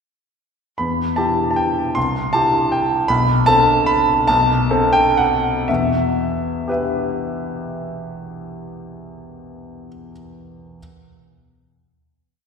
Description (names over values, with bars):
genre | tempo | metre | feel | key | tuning
classical, piano waltz | 116-164 BPM | 3/4 | rubato | E minor | A4 = 441 Hz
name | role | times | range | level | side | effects
clear grand piano | solo | 0.8-10.8 s | B1 to C6 | -16 LUFS | equal | none
room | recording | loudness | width
wet concert hall reverb, RT60 2.0 s | recorded in a church or concert hall | -15 LUFS | side -6 dB against mid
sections
0.8-5.7 A section; 5.7-8.6 final chord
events
slowing down 2.5-5.7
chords
0.8 Em; 2.0 C; 3.1 B5; 5.7 Em